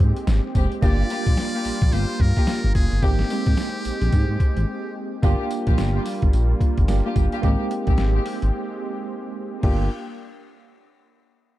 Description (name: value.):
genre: R&B, new jack swing.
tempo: 109 BPM.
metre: 4/4.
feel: swing 60% on 16ths.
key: G phrygian.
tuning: A4 = 441 Hz.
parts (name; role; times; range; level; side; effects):
bell-like tine electric piano; accompaniment; 0.0-9.9 s; Bb3 to G4; -29 LUFS; right 4 dB; medium stereo tremolo.
warm analog pad; sustained chords; 0.0-9.9 s; G3 to G5; -33 LUFS; equal; chorus.
smooth gliding synth bass; bass; 0.0-9.9 s; F#1 to Ab2; -21 LUFS; equal; none.
boom bap sampler-style drum kit; drums; 0.0-9.8 s; crash cymbal, hi-hat, kick drum, snare drum, tambourine; -21 LUFS; equal; none.
warm studio string section; stabs; 0.5-9.9 s; Ab3 to G4; -30 LUFS; left 2 dB; digital delay.
trumpet with metal mute; melody; 0.8-5.0 s; G4 to D5; -31 LUFS; equal; digital delay.
room: little or no reverb.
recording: dark, warm production.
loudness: -19 LUFS.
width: side -15 dB against mid.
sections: 0.0-5.2 A section; 5.2-9.6 B section; 9.6-11.6 C section.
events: break 4.7-5.2, 8.5-9.6.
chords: 0.0 Abmaj7; 0.8 Gm7; 3.0 Abmaj7; 5.2 Gm7; 7.4 Abmaj7; 9.6 Gm7.